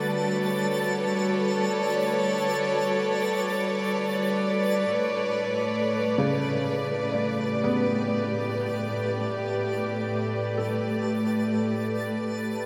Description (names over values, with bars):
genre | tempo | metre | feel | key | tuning
ambient | free time | none | none | unclear | A4 = 440 Hz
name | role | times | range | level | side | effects
dark chamber string section | sustained chords | 0.0-12.7 s | A2 to D5 | -27 LUFS | equal | shimmer reverb
bowed-like drone | drone | 0.0-5.1 s | D3 to A3 | -41 LUFS | equal | built-in reverb
twinkling granular texture | texture | 0.0-12.7 s | A5 | -39 LUFS | equal | built-in reverb, shimmer reverb
felt-muted upright piano | arpeggios | 6.2-12.7 s | C#3 to D5 | -34 LUFS | equal | diffuse ambient delay, shimmer reverb
room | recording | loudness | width
wet huge ambient reverb, RT60 8.5 s | none | -26 LUFS | mono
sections
0.0-5.0 A section; 5.0-12.7 B section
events
fade-in on synth texture 5.0-12.7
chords
0.0 Gmaj9#11; 5.0 A7sus4